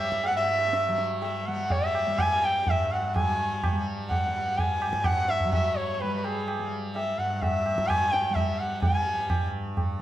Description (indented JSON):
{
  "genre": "indian classical, Hindustani",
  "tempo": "126 BPM",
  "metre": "3/4",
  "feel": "straight",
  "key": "unclear",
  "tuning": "A4 = 445 Hz",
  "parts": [
    { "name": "rich sarangi", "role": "melody", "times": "0.0-9.5 s", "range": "Ab4 to Ab5", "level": "-26 LUFS", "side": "equal", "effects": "none" },
    { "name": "tanpura", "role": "drone", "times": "0.0-10.0 s", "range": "G2 to G3", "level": "-33 LUFS", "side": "equal", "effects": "none" },
    { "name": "tabla", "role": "percussion", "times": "0.0-9.9 s", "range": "none", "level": "-29 LUFS", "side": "right 1 dB", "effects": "none" }
  ],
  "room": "wet recital hall reverb, RT60 1.4 s",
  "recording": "dark, warm production",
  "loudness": "-24 LUFS",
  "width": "side -13 dB against mid",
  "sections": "0.0-3.1 A section; 3.1-10.0 B section",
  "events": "speeding up 0.0-10.0",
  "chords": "none"
}